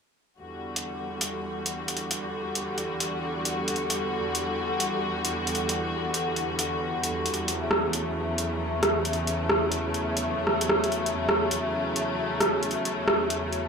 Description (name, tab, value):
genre	future garage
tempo	134 BPM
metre	4/4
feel	swing 64% on 16ths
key	E dorian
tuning	A4 = 440 Hz
part	rich studio string section	sustained chords	0.4-13.7 s	E2 to F#4	-27 LUFS	left 1 dB	none
part	deep house drum kit	drums	0.8-13.6 s	hi-hat, rim click	-27 LUFS	right 1 dB	overdrive
room	moderate huge ambient reverb, RT60 4.2 s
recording	none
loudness	-25 LUFS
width	side -5 dB against mid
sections	0.4-13.7 A section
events	none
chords	0.4 Em9; 7.6 F#m/E